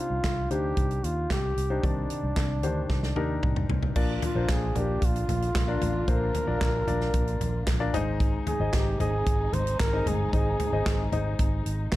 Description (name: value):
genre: piano-driven pop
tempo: 113 BPM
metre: 4/4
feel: straight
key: Bb mixolydian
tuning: A4 = 440 Hz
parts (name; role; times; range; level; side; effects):
- trumpet with bucket mute; melody; 0.0-11.1 s; D4 to C5; -31 LUFS; right 1 dB; none
- warm grand piano; accompaniment; 0.0-12.0 s; Ab2 to Eb5; -32 LUFS; left 4 dB; none
- vintage muted fingered electric bass; bass; 0.1-12.0 s; G1 to Eb2; -29 LUFS; equal; none
- natural country drum kit; drums; 0.2-12.0 s; crash cymbal, handclaps, hi-hat, kick drum, snare drum, toms; -28 LUFS; equal; none
- dark studio string section; sustained chords; 4.0-12.0 s; C3 to F4; -39 LUFS; left 1 dB; none
room: light reverb, small room reverb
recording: dark, warm production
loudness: -24 LUFS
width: side -16 dB against mid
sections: 0.0-4.0 A section; 4.0-12.0 B section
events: drum fill 2.9-4.0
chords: 0.0 Cmadd9; 4.0 Bb; 7.9 Ab